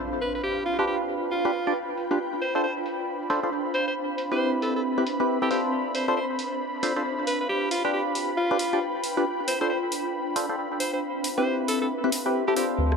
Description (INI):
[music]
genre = UK garage, two-step garage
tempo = 136 BPM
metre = 4/4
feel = swing 61% on 16ths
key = unclear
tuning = A4 = 438 Hz
[part]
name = warm analog pad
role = sustained chords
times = 0.0-13.0 s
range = B5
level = -35 LUFS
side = equal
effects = chorus
[part]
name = impact and riser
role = sound effects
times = 0.0-0.4, 12.8-13.0 s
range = none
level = -46 LUFS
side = equal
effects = none
[part]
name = ethereal airy pad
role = texture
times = 0.0-13.0 s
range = C4 to G5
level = -30 LUFS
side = equal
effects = ensemble chorus, built-in reverb
[part]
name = edgy alto saxophone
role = melody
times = 0.2-12.7 s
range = F4 to C5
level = -30 LUFS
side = equal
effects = analog delay
[part]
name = garage drum kit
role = drums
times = 0.2-13.0 s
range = hi-hat, rim click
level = -33 LUFS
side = equal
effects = high-pass filter on snare, low-pass filter on snare, high-pass filter on hats, low-pass filter on hats
[part]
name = percussive organ stab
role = stabs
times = 0.8-13.0 s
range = C4 to D5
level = -28 LUFS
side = equal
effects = chorus, phaser, tape echo
[part]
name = dark detuned saw bass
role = bass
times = 12.8-13.0 s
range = D2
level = -22 LUFS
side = equal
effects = none
[sound]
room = moderate plate reverb, RT60 2.1 s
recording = echo-heavy mix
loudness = -24 LUFS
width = side -5 dB against mid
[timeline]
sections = 0.0-12.8 A section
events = impact 0.0-0.4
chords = 0.2 G7; 2.2 Dm7; 3.7 Cmaj7; 5.7 Dm7; 7.3 G7; 9.3 Dm7; 10.8 Cmaj7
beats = | 0.43 0.88 1.32 1.76 | 2.20 2.64 3.08 3.52 | 3.96 4.40 4.84 5.29 | 5.73 6.17 6.61 7.05 | 7.49 7.93 8.38 8.82 | 9.26 9.70 10.14 10.58 | 11.02 11.46 11.90 12.35 | 12.79